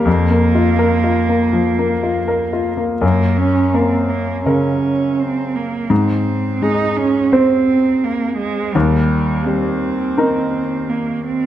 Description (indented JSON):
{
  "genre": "neoclassical piano and strings",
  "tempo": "84 BPM",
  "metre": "4/4",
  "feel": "rubato",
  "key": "unclear",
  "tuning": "A4 = 440 Hz",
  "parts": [
    { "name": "warm grand piano", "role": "accompaniment", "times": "0.0-11.5 s", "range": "Eb2 to C5", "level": "-16 LUFS", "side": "left 2 dB", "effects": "none" },
    { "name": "warm cello", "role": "second line", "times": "0.1-11.5 s", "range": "G3 to Eb4", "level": "-18 LUFS", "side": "right 4 dB", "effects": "none" }
  ],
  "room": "wet recital hall reverb, RT60 1.7 s",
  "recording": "none",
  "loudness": "-14 LUFS",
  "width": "side -11 dB against mid",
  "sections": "0.0-3.0 A section; 3.0-11.5 B section",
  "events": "none",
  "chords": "0.1 Bb5/F; 3.0 Gb; 5.9 Ab; 8.7 Eb"
}